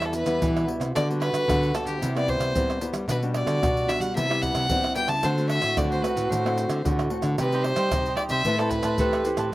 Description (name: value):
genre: samba and choro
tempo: 112 BPM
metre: 4/4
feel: straight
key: G major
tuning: A4 = 438 Hz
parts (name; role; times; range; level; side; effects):
- rich fiddle; melody; 0.0-9.2 s; G4 to A5; -27 LUFS; left 1 dB; none
- mellow trombone; second line; 0.0-9.5 s; E4 to G4; -30 LUFS; right 4 dB; slapback echo
- nylon-string guitar; accompaniment; 0.0-9.5 s; G2 to B4; -30 LUFS; left 3 dB; slapback echo
- nylon-string guitar; bass; 0.0-9.5 s; E2 to C4; -28 LUFS; equal; none
- maracas, pandeiro, tamborim and surdo; percussion; 0.0-9.5 s; none; -30 LUFS; right 1 dB; none
- cavaquinho; accompaniment; 7.4-9.5 s; Eb4 to A5; -31 LUFS; right 4 dB; none
room: little or no reverb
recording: recorded outdoors, with no room sound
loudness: -22 LUFS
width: side -16 dB against mid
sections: 0.0-9.5 A section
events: none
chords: 0.0 Em; 1.0 Gmaj7/D; 2.0 Cmaj7; 3.1 Gmaj7/B; 4.2 Cmaj7; 5.2 D7; 7.4 Cm; 8.5 Amadd9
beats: 0.42 | 0.95 1.49 2.02 2.56 | 3.10 3.63 4.17 4.70 | 5.24 5.77 6.31 6.85 | 7.38 7.92 8.46 8.99 | 9.53